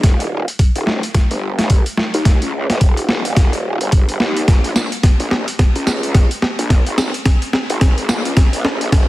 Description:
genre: glitch hop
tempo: 108 BPM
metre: 4/4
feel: swing 59% on 16ths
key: Bb minor pentatonic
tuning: A4 = 440 Hz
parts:
  - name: growl bass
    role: bass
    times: 0.0-9.1 s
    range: Eb1 to Eb2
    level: -20 LUFS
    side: equal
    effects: chorus, tube saturation, high-pass filter
  - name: boom bap sampler-style drum kit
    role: drums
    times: 0.0-9.1 s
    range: hi-hat, snare drum, tambourine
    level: -19 LUFS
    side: equal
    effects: overdrive
  - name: electronic kick drum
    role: drums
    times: 0.0-9.1 s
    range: none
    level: -12 LUFS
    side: equal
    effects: overdrive
room: light reverb, digital ambience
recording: dense, heavily limited modern master, vinyl crackle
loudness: -13 LUFS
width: side -17 dB against mid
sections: 0.0-9.1 A section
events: build-up 0.0-9.1; drum fill 0.0-9.1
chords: none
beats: | 0.04 0.59 1.15 1.70 | 2.26 2.81 3.37 3.93 | 4.48 5.04 5.59 6.15 | 6.70 7.26 7.82 8.37 | 8.93

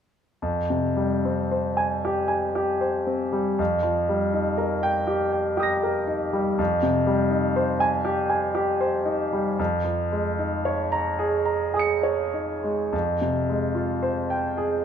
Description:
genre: classical, impressionist solo piano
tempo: 48-62 BPM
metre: 3/4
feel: rubato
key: F minor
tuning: A4 = 440 Hz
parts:
  - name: clear concert grand piano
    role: solo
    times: 0.4-14.8 s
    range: F2 to Db7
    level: -22 LUFS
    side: equal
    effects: none
room: moderate recital hall reverb, RT60 1.3 s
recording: minimal, uncompressed stereo recording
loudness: -22 LUFS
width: side -8 dB against mid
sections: 0.4-12.9 A section; 12.9-14.8 B section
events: none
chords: 0.4 Fmadd9; 3.6 Ebadd9/F; 6.6 Fm9; 9.6 Db69/F; 12.9 Fmadd9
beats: | 0.42 1.53 2.56 | 3.59 4.59 5.59 | 6.59 7.58 8.56 | 9.59 10.64 11.74 | 12.93 14.02

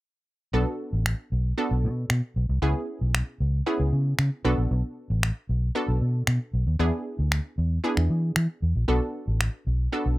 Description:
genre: dance-pop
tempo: 115 BPM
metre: 4/4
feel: straight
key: B dorian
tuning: A4 = 440 Hz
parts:
  - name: wide unison pluck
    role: accompaniment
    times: 0.5-10.2 s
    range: B3 to A4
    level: -28 LUFS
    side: right 1 dB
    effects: none
  - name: vintage muted fingered electric bass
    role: bass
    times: 0.5-10.2 s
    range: A1 to E3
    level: -23 LUFS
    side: equal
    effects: none
  - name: electronic finger snaps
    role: drums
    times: 1.1-9.5 s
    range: none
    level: -27 LUFS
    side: equal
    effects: none
room: little or no reverb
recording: rough home demo mix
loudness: -23 LUFS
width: side -18 dB against mid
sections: 0.5-10.2 A section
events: none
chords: 0.5 Bm7; 2.6 C#m7; 4.4 Bm7; 6.8 E7; 8.9 Bm7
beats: | 0.54 1.06 1.58 2.10 | 2.62 3.15 3.67 4.19 | 4.71 5.23 5.75 6.28 | 6.80 7.32 7.84 8.36 | 8.88 9.41 9.93

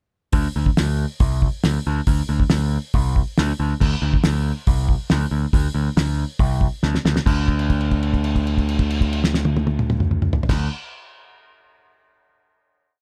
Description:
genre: garage rock duo or trio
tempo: 138 BPM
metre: 4/4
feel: straight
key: unclear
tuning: A4 = 436 Hz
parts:
  - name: growling picked electric bass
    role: bass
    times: 0.3-10.7 s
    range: C2 to D2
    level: -23 LUFS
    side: equal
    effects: overdrive
  - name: cloth-damped thuddy drum kit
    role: drums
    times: 0.3-10.6 s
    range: crash cymbal, hi-hat, kick drum, snare drum, toms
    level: -23 LUFS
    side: equal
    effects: none
room: little or no reverb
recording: none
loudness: -20 LUFS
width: mono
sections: 0.3-7.3 riff; 7.3-10.7 final note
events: drum fill 6.8-7.3; held note 7.3-10.5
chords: none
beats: | 0.34 0.77 1.21 1.64 | 2.08 2.51 2.95 3.38 | 3.81 4.24 4.68 5.11 | 5.54 5.97 6.41 6.84 | 7.27 7.71 8.14 8.57 | 9.01 9.44 9.88 10.31

